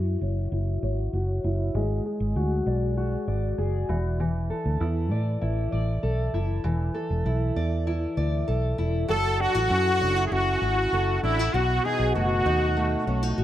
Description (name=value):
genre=indie pop, bedroom pop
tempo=98 BPM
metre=4/4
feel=straight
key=F# minor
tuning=A4 = 440 Hz
part: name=fingerpicked steel-string acoustic guitar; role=accompaniment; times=0.0-13.4 s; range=B2 to D5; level=-28 LUFS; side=left 1 dB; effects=wide subtle chorus, vibrato effect, low-pass filter
part: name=vintage muted fingered electric bass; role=bass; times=0.0-13.4 s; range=E1 to A2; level=-26 LUFS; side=equal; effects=none
part: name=brilliant trumpet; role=melody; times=9.1-13.3 s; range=E4 to A4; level=-24 LUFS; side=equal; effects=ensemble chorus, tape echo
room=light reverb, small room ambience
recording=none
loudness=-23 LUFS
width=side -12 dB against mid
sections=0.0-9.1 A section; 9.1-13.4 B section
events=filter sweep on steel-string acoustic guitar 0.0-9.1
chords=0.0 F#7(no3); 1.7 G#m7b5; 3.9 E7sus4; 9.1 F#m7; 11.5 B7